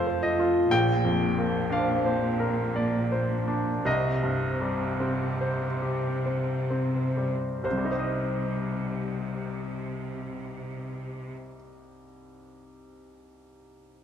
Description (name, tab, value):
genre	cinematic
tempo	42-62 BPM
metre	3/4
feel	rubato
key	C minor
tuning	A4 = 438 Hz
part	bright baby grand piano	accompaniment	0.0-14.0 s	Bb1 to G5	-28 LUFS	left 1 dB	none
part	concert harp	arpeggios	0.0-11.7 s	F2 to Eb5	-31 LUFS	equal	none
part	rich studio cello section	bass	0.0-11.3 s	F2 to C3	-31 LUFS	equal	none
room	moderate scoring stage reverb, RT60 2.0 s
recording	none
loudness	-25 LUFS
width	side -8 dB against mid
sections	0.0-7.6 A section; 7.6-11.9 B section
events	slowing down 0.0-7.6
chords	0.0 F; 0.7 Bbadd9; 3.9 Cm